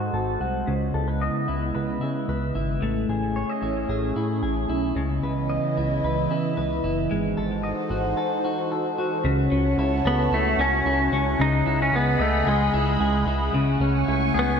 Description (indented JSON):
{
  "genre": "dream pop",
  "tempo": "112 BPM",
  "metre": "4/4",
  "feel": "straight",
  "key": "C# minor",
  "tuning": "A4 = 438 Hz",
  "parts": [
    { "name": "phased analog pad", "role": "sustained chords", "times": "0.0-14.6 s", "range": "C#3 to C#6", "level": "-27 LUFS", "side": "right 2 dB", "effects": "phaser, chorus, low-pass filter" },
    { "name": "clean electric guitar", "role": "arpeggios", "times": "0.0-14.6 s", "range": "C#3 to D#5", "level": "-26 LUFS", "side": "left 3 dB", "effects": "lush chorus, low-pass filter, digital delay" },
    { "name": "fat analog bass", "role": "bass", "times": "0.0-14.6 s", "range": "F#1 to C#3", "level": "-27 LUFS", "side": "right 1 dB", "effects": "none" },
    { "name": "clean lap steel guitar", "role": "melody", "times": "10.1-14.6 s", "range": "G#3 to D#4", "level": "-24 LUFS", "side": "right 1 dB", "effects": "digital delay" }
  ],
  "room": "moderate lush hall reverb, RT60 2.5 s",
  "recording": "dark, warm production",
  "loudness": "-21 LUFS",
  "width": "side -6 dB against mid",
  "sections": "0.0-9.3 A section; 9.3-14.6 B section",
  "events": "filter sweep 0.0-9.3",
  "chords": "0.0 G#7b9; 0.7 C#m9; 2.8 Amaj9#11; 5.0 C#m9; 7.1 G#7b9; 9.3 F#m7/C#; 11.4 Emaj7/C#; 13.5 Amaj7/C#"
}